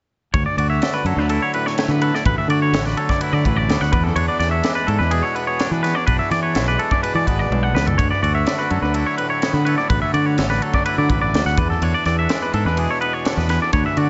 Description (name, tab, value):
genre	math rock and midwest emo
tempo	126 BPM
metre	4/4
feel	straight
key	D lydian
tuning	A4 = 440 Hz
part	twangy electric guitar	arpeggios	0.3-14.1 s	G#4 to F#5	-24 LUFS	equal	dub echo
part	growling fingered electric bass	bass	0.3-14.1 s	G#1 to E3	-22 LUFS	equal	overdrive
part	crisp fusion drum kit	drums	0.3-14.1 s	kick drum, ride cymbal, snare drum, toms	-26 LUFS	equal	dub echo
part	twangy electric guitar	accompaniment	0.4-14.1 s	D2 to A4	-27 LUFS	equal	dub echo
room	light reverb, small room ambience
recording	echo-heavy mix, nothing above 7.8 kHz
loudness	-19 LUFS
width	mono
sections	0.3-14.1 A section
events	drum fill 7.5-8.0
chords	0.3 D6; 3.9 E7; 8.0 D6; 11.6 E7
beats	| 0.34 0.82 1.30 1.78 | 2.25 2.73 3.21 3.69 | 4.16 4.64 5.12 5.60 | 6.08 6.55 7.03 7.51 | 7.99 8.46 8.94 9.42 | 9.90 10.38 10.85 11.33 | 11.81 12.29 12.77 13.25 | 13.73